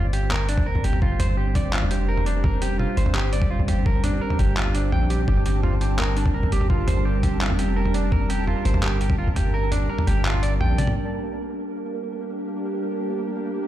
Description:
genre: half-time drum and bass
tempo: 169 BPM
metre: 4/4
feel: half-time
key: G minor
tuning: A4 = 438 Hz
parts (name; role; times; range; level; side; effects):
- bowed-like drone; sustained chords; 0.4-13.7 s; G3 to Bb4; -29 LUFS; right 1 dB; built-in reverb, sidechain pumping
- clean electric guitar; arpeggios; 0.0-10.9 s; D4 to G5; -29 LUFS; right 2 dB; dub echo
- long sustained 808-style bass; bass; 0.0-10.9 s; F1 to Bb1; -23 LUFS; equal; tube saturation
- pulsing gated texture; texture; 0.0-13.7 s; Bb3 to A5; -33 LUFS; right 2 dB; chorus, built-in reverb
- boom bap sampler-style drum kit; drums; 0.1-10.9 s; handclaps, hi-hat, toms; -27 LUFS; equal; overdrive
- electronic kick drum; drums; 0.6-9.3 s; none; -23 LUFS; equal; overdrive
room: little or no reverb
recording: played on a big sound system in a bare room, large studio reverb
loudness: -20 LUFS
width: side -12 dB against mid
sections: 0.0-11.0 A section; 11.0-13.7 B section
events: kick drops out 9.5-11.0; drum fill 10.8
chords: 0.0 G5

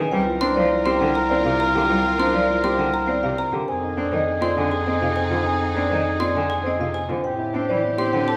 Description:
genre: classical, minimalist pattern music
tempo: 101 BPM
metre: 3/4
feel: straight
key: F dorian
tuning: A4 = 437 Hz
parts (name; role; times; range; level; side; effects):
- marimba with medium mallets; melody; 0.0-8.3 s; Bb4 to Ab5; -27 LUFS; equal; none
- clear cello; accompaniment; 0.0-8.2 s; C3 to C4; -30 LUFS; equal; none
- dark baby grand piano; arpeggios; 0.0-8.4 s; C4 to C5; -30 LUFS; equal; none
- warm oboe; second line; 0.1-8.4 s; G4 to Bb4; -29 LUFS; equal; none
- clear symphonic string section; sustained chords; 0.1-8.4 s; C4 to Bb4; -33 LUFS; equal; none
- warm bass clarinet; bass; 0.1-8.4 s; C2 to A2; -29 LUFS; equal; none
- xylophone with plastic mallets; arpeggios; 0.4-8.4 s; Ab5 to C6; -32 LUFS; equal; none
room: wet recital hall reverb, RT60 1.7 s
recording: recorded in a church or concert hall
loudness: -21 LUFS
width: mono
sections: 0.0-8.4 A section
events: none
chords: 0.1 C7sus4; 3.7 Fm7; 7.2 Am7

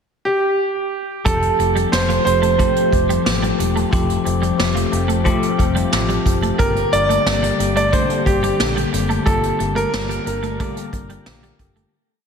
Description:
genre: 1980s-style pop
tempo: 90 BPM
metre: 4/4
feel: straight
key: F major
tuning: A4 = 440 Hz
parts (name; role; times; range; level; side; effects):
- clear grand piano; melody; 0.3-11.6 s; G4 to D5; -19 LUFS; right 2 dB; shimmer reverb, slapback echo
- bell-like tine electric piano; accompaniment; 1.2-11.9 s; D3 to A5; -21 LUFS; left 5 dB; phaser, shimmer reverb
- twelve-string electric guitar; riff; 1.3-11.9 s; F3 to A3; -26 LUFS; right 3 dB; ensemble chorus, tape echo, shimmer reverb
- vintage muted fingered electric bass; bass; 1.3-11.8 s; E1 to Bb1; -23 LUFS; equal; none
- vintage brush drum kit; drums; 1.3-11.9 s; hi-hat, kick drum, snare drum; -22 LUFS; right 1 dB; none
room: wet lush hall reverb, RT60 2.7 s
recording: big arena sound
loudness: -16 LUFS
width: side -6 dB against mid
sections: 0.0-1.3 pickup bar; 1.3-11.9 verse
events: tine electric piano fill 5.3-6.6; fade-out 9.3-11.9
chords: 0.0 N.C.; 1.3 Fadd9; 6.6 Gm

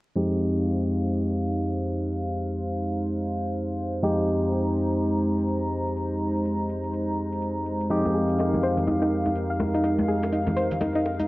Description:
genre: deep house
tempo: 124 BPM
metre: 4/4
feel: swing 60% on 16ths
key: F minor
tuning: A4 = 442 Hz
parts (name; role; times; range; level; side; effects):
- hollow soft pad; sustained chords; 0.2-11.3 s; Ab3 to Bb5; -30 LUFS; right 1 dB; chorus
- barky tine electric piano; stabs; 0.2-11.3 s; F2 to G4; -25 LUFS; equal; low-pass filter, analog delay
- electronic hi-hat; drums; 0.2-11.3 s; none; -57 LUFS; right 1 dB; low-pass filter on hats, low-pass filter on room
- soft round pluck; arpeggios; 7.9-11.3 s; Eb4 to F5; -27 LUFS; left 1 dB; chorus, analog delay
- congas and bongos; percussion; 8.1-11.3 s; none; -31 LUFS; left 1 dB; none
room: moderate echo chamber reverb, RT60 1.3 s, digital ambience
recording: vinyl crackle, low-pass filter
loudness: -23 LUFS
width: side -19 dB against mid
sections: 0.2-11.3 A section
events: filter sweep on tine electric piano 0.2-11.3; filter sweep 0.2-11.3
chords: 0.2 Fm7

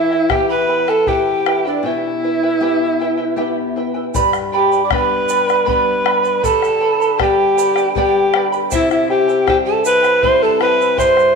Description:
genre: andean folk, Andean ensemble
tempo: 79 BPM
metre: 3/4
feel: straight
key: unclear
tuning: A4 = 440 Hz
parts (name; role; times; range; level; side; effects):
- warm alto saxophone; melody; 0.0-11.4 s; D4 to D5; -15 LUFS; left 1 dB; none
- breathy mellow pan flute; second line; 0.0-11.4 s; D5 to D6; -22 LUFS; right 7 dB; none
- charango; accompaniment; 0.0-11.4 s; E4 to B5; -20 LUFS; right 3 dB; none
- flamenco guitar; accompaniment; 0.0-11.4 s; G2 to G4; -26 LUFS; left 10 dB; none
- bombo; percussion; 0.1-11.4 s; none; -23 LUFS; left 6 dB; none
- egg shaker; percussion; 4.1-11.3 s; none; -31 LUFS; right 13 dB; none
room: wet echo chamber reverb, RT60 1.6 s, small room reverb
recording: 1960s-style stereo with parts hard left and right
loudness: -13 LUFS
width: side -4 dB against mid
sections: 0.0-4.1 A section; 4.1-11.4 B section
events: break 1.8-4.1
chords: 0.0 Em; 4.1 G; 8.7 C

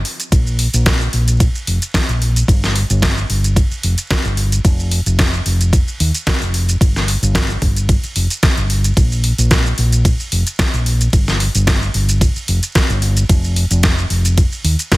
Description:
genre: nu-disco, nu disco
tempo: 111 BPM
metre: 4/4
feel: swing 54% on 16ths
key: unclear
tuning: A4 = 441 Hz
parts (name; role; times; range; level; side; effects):
- pop drum kit; drums; 0.1-15.0 s; hi-hat, ride cymbal, shaker, snare drum; -19 LUFS; equal; overdrive
- fingered electric bass; bass; 0.3-14.7 s; F1 to Eb2; -16 LUFS; equal; sidechain pumping
- electronic kick drum; drums; 0.3-15.0 s; none; -15 LUFS; equal; overdrive
room: little or no reverb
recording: dense, heavily limited modern master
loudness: -13 LUFS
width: side -20 dB against mid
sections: 0.0-15.0 A section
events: none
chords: none

